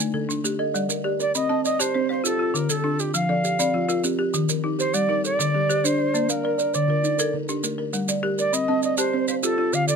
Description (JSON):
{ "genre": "southern african traditional, mbira-style interlocking cycle", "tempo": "134 BPM (dotted quarters)", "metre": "12/8", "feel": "straight", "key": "C dorian", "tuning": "A4 = 441 Hz", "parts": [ { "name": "buzzing kalimba", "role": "arpeggios", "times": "0.0-10.0 s", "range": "D3 to A5", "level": "-26 LUFS", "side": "right 5 dB", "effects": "none" }, { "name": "folk marimba with medium hard mallets", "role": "arpeggios", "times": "0.0-10.0 s", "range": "D3 to A5", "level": "-25 LUFS", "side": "left 4 dB", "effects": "none" }, { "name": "maracas", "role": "percussion", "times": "0.0-10.0 s", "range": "none", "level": "-27 LUFS", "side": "right 6 dB", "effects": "none" }, { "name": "mellow reedy Native American-style cedar flute", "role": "melody", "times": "1.2-10.0 s", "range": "G4 to F5", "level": "-24 LUFS", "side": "right 2 dB", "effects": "none" } ], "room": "little or no reverb", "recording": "close, detailed microphones", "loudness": "-20 LUFS", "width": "side -6 dB against mid", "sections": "0.0-1.3 A section; 1.3-10.0 B section", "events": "none", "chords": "0.4 Gm; 1.3 Cm; 2.2 Dm; 3.1 F; 4.0 Eb; 4.9 Gm; 5.8 Bb; 6.7 Dm; 7.6 Gm; 8.5 Cm; 9.4 Dm", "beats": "0.00 0.45 0.90 | 1.35 1.80 2.25 2.70 | 3.15 3.59 4.04 4.49 | 4.94 5.39 5.84 6.29 | 6.74 7.19 7.64 8.09 | 8.53 8.98 9.43 9.88" }